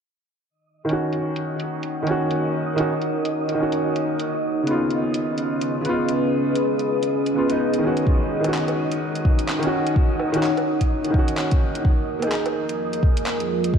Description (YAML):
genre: future garage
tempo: 127 BPM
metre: 4/4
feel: swing 60% on 16ths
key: Eb minor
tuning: A4 = 440 Hz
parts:
  - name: deep dark ambient pad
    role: sustained chords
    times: 1.7-13.8 s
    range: F3 to Gb5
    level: -25 LUFS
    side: equal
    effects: chorus, built-in reverb, sidechain pumping
  - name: wind-like tuned noise texture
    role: texture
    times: 1.4-13.8 s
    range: Eb5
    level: -33 LUFS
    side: right 3 dB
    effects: built-in reverb, analog chorus
  - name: felt-muted upright piano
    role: accompaniment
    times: 0.8-13.4 s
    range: Db3 to Ab4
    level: -23 LUFS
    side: equal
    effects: sidechain pumping, low-pass filter, tape echo
  - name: garage drum kit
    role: drums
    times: 0.9-13.7 s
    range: handclaps, hi-hat, woodblock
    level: -32 LUFS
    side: equal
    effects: overdrive, low-pass filter on hats, low-pass filter on perc, low-pass filter on snare
  - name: electronic kick drum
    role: drums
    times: 8.1-13.8 s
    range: none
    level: -18 LUFS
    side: equal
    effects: none
room: wet church reverb, RT60 3.6 s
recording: dreamy mix soaked in reverb, cassette tape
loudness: -20 LUFS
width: side -7 dB against mid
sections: 0.5-13.8 A section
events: filter sweep on drum 0.5-13.8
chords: 0.5 Ebm7; 4.3 Db7; 8.1 Ebm7; 11.8 Bb7sus4/F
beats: | 0.51 0.98 1.46 1.93 | 2.40 2.87 3.35 3.82 | 4.29 4.76 5.24 5.71 | 6.18 6.65 7.12 7.60 | 8.07 8.54 9.02 9.49 | 9.96 10.43 10.90 11.38 | 11.85 12.32 12.79 13.27 | 13.74